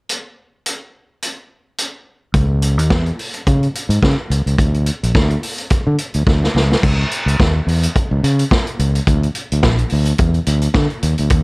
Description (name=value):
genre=disco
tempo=107 BPM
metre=4/4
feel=swing 56% on 16ths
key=unclear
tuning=A4 = 440 Hz
part: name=vintage drum kit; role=drums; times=0.1-11.4 s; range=crash cymbal, hi-hat, kick drum, snare drum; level=-17 LUFS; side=equal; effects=none
part: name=overdriven fingered electric bass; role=bass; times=2.3-11.4 s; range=A#1 to D3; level=-15 LUFS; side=equal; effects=none
room=little or no reverb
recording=none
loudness=-14 LUFS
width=side -32 dB against mid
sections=0.1-2.3 A section; 2.3-6.8 B section; 6.8-11.4 C section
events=drum fill 6.3-6.8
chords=none